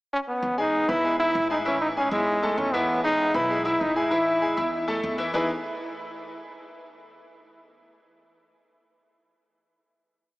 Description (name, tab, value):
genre	latin, salsa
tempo	195 BPM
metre	4/4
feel	straight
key	E major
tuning	A4 = 442 Hz
part	bright trombone	melody	0.1-5.5 s	G#3 to E4	-24 LUFS	equal	analog delay
part	upright bass	bass	0.4-5.5 s	A1 to E2	-37 LUFS	equal	none
part	bright concert grand piano	accompaniment	0.6-5.5 s	E3 to E6	-28 LUFS	left 1 dB	none
room	wet huge ambient reverb, RT60 5.1 s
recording	dreamy mix soaked in reverb, small speaker sound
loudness	-22 LUFS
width	side -19 dB against mid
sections	0.0-0.4 pickup bar; 0.4-5.3 montuno (vamp); 5.3-6.6 final chord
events	none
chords	0.4 Emaj7; 1.7 A5; 2.9 Emaj7; 4.1 A5; 5.3 Emaj7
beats	0.12 | 0.43 0.73 1.04 1.35 | 1.66 1.97 2.27 2.58 | 2.89 3.20 3.50 3.81 | 4.12 4.43 4.73 5.04 | 5.35